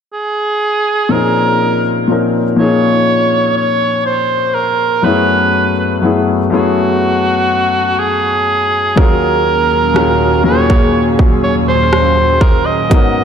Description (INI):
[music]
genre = contemporary R&B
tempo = 61 BPM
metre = 4/4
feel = straight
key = Bb phrygian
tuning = A4 = 443 Hz
[part]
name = warm cor anglais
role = melody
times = 0.1-13.2 s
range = Gb4 to Eb5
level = -14 LUFS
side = right 2 dB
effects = analog delay
[part]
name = warm grand piano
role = accompaniment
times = 1.1-13.2 s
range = Eb2 to Bb4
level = -14 LUFS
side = left 3 dB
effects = wide subtle chorus
[part]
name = lush unison pad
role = sustained chords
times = 9.0-13.2 s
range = Eb2 to Bb4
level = -17 LUFS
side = right 2 dB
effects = chorus, phaser
[part]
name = trap drum kit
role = drums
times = 9.0-13.1 s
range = hi-hat, kick drum, rim click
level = -13 LUFS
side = right 1 dB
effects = none
[sound]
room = wet plate reverb, RT60 2.6 s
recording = dreamy mix soaked in reverb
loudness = -10 LUFS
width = side -7 dB against mid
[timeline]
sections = 0.0-1.1 A section; 1.1-13.2 B section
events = none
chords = 0.0 N.C.; 1.1 Bbm11; 5.0 Gbm11; 9.0 Ebm11